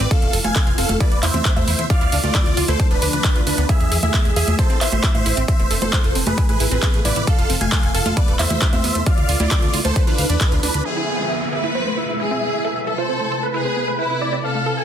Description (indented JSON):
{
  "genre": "uplifting trance",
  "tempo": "134 BPM",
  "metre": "4/4",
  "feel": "straight",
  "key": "A harmonic minor",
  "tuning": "A4 = 440 Hz",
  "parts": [
    { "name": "big supersaw lead", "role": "melody", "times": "0.0-14.8 s", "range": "D4 to G#5", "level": "-23 LUFS", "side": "right 1 dB", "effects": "phaser, sidechain pumping, low-pass filter, ping-pong delay" },
    { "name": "warm grand piano", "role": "second line", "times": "0.0-10.8 s", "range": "B4 to G#5", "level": "-31 LUFS", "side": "equal", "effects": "sidechain pumping, digital delay" },
    { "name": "wide unison pluck", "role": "arpeggios", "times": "0.0-14.8 s", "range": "G#3 to B5", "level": "-29 LUFS", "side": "right 4 dB", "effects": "sidechain pumping, digital delay" },
    { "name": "plucky analog bass", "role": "bass", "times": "0.0-10.8 s", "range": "D1 to A2", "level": "-22 LUFS", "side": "equal", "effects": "sidechain pumping" },
    { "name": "big-room dance drum kit", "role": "drums", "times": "0.0-10.8 s", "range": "congas, handclaps, hi-hat", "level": "-23 LUFS", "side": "right 1 dB", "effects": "overdrive" },
    { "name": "electronic kick drum", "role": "drums", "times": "0.1-10.5 s", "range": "none", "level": "-18 LUFS", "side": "equal", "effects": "overdrive" },
    { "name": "rich symphonic violin section", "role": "second line", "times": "10.9-14.8 s", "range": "E4 to B4", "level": "-24 LUFS", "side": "equal", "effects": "digital delay" },
    { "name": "downlifter", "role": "sound effects", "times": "10.9-14.4 s", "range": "none", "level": "-28 LUFS", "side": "equal", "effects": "none" }
  ],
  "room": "light reverb",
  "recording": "dense, heavily limited modern master",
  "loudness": "-16 LUFS",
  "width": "side -9 dB against mid",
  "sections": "0.0-10.9 A section; 10.9-14.8 B section",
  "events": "drop 0.0-10.9",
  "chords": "0.1 F; 1.0 Amadd9/E; 1.9 Dmadd9; 2.8 Bdim/D; 3.7 E; 4.6 Amadd9; 5.5 F; 6.4 Amadd9; 7.3 F; 8.2 Amadd9/E; 9.1 Dmadd9; 10.0 Bdim/D; 10.9 E; 11.8 Amadd9; 12.6 F; 13.5 Amadd9",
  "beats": "| 0.11 0.56 1.00 1.45 | 1.90 2.35 2.80 3.24 | 3.69 4.14 4.59 5.04 | 5.48 5.93 6.38 6.83 | 7.27 7.72 8.17 8.62 | 9.06 9.51 9.96 10.41 | 10.86 11.30 11.75 12.20 | 12.65 13.10 13.54 13.99 | 14.44"
}